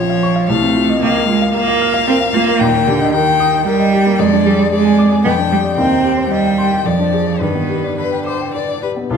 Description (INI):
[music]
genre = quick classical-period movement for piano trio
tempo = 105-115 BPM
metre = 3/4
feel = rubato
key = unclear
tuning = A4 = 440 Hz
[part]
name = rich violin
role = melody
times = 0.0-8.9 s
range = B4 to G5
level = -19 LUFS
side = left 10 dB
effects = none
[part]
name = rich cello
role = second line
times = 0.0-9.2 s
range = Bb2 to F4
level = -15 LUFS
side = right 5 dB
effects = none
[part]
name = warm baby grand piano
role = accompaniment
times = 0.0-9.2 s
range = Bb1 to F6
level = -18 LUFS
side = left 2 dB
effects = none
[sound]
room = wet recital hall reverb, RT60 1.5 s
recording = none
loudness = -12 LUFS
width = side -6 dB against mid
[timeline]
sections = 0.0-9.1 A section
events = none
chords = 0.5 F7/C; 1.0 Bbm/Db; 2.6 Eb; 4.2 Ddim/F; 5.2 G7(no3)/F; 5.8 Cm/Eb; 6.9 Ddim/F; 7.4 G